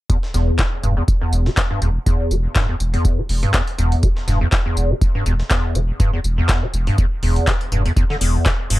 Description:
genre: acid house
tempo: 122 BPM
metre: 4/4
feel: swing 55% on 16ths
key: E minor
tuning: A4 = 440 Hz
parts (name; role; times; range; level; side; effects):
- liquid acid bass; riff; 0.1-8.8 s; E2 to E3; -21 LUFS; equal; overdrive, wide subtle chorus, tape echo
- breakbeat sampler-style drum kit; drums; 0.1-8.8 s; hi-hat, snare drum, tambourine; -31 LUFS; equal; high-pass filter on perc, high-pass filter on snare, high-pass filter on hats, high-pass filter on room
- electronic kick drum; drums; 0.1-8.6 s; none; -18 LUFS; equal; none
- warm sub bass; bass; 0.3-8.8 s; E1; -19 LUFS; equal; tube saturation, sidechain pumping
- electro analog drum machine; drums; 0.6-8.8 s; handclaps, hi-hat; -23 LUFS; left 1 dB; none
room: little or no reverb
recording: none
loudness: -16 LUFS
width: side -17 dB against mid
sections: 0.1-8.8 A section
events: none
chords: 0.1 E5

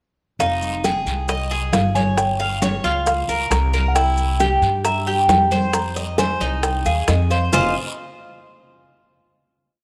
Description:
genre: latin, Cuban son and guajira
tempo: 134 BPM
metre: 4/4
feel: straight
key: F minor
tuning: A4 = 439 Hz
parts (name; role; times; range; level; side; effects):
- small celesta; second line; 0.4-7.7 s; Eb5 to Bb5; -25 LUFS; equal; none
- Cuban tres; arpeggios; 0.4-7.7 s; Eb4 to F5; -25 LUFS; equal; none
- upright bass; bass; 0.4-7.7 s; F1 to G2; -25 LUFS; equal; none
- bongos; percussion; 0.4-7.6 s; none; -28 LUFS; equal; none
- congas; percussion; 0.4-7.6 s; none; -29 LUFS; equal; none
- guiro; percussion; 0.4-7.6 s; none; -36 LUFS; equal; none
- maracas; percussion; 0.4-7.6 s; none; -35 LUFS; equal; none
room: moderate plate reverb, RT60 2.3 s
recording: none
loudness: -19 LUFS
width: mono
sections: 0.4-7.5 montuno (vamp); 7.5-9.3 final chord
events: none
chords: 0.4 Fm7; 2.2 Gm7b5; 4.0 C7; 5.7 Fm7; 7.5 F7(no3)

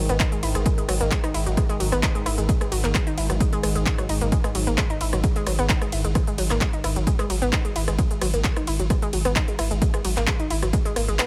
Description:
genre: driving peak-time techno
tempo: 131 BPM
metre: 4/4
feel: straight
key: unclear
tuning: A4 = 440 Hz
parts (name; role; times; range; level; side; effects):
- warm sub bass; bass; 0.0-11.2 s; G#1; -28 LUFS; equal; overdrive, sidechain pumping, low-pass filter
- analog drone; drone; 0.0-11.3 s; G#2 to D#3; -34 LUFS; equal; chorus, sidechain pumping
- analog pluck; riff; 0.1-11.3 s; F#3 to E4; -30 LUFS; equal; chorus, overdrive, sidechain pumping, dub echo
- techno drum kit; drums; 0.1-11.3 s; handclaps, hi-hat, ride cymbal, rim click; -30 LUFS; equal; sidechain pumping on hats, sidechain pumping on cymbals
- electronic kick drum; drums; 0.2-10.8 s; none; -25 LUFS; equal; none
room: little or no reverb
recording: none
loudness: -23 LUFS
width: mono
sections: 0.0-11.3 A section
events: none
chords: 0.0 G#5

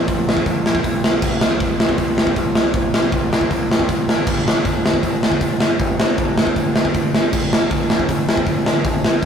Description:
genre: punk rock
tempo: 157 BPM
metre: 4/4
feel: straight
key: unclear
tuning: A4 = 438 Hz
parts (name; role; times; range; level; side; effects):
- growling picked electric bass; bass; 0.0-9.3 s; G1 to C2; -26 LUFS; equal; overdrive
- big rock drum kit; drums; 0.1-9.3 s; crash cymbal, hi-hat, kick drum, snare drum; -16 LUFS; equal; none
room: light reverb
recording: rough rehearsal-room recording, warm saturation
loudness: -15 LUFS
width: side -7 dB against mid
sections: 0.0-9.3 A section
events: none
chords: none

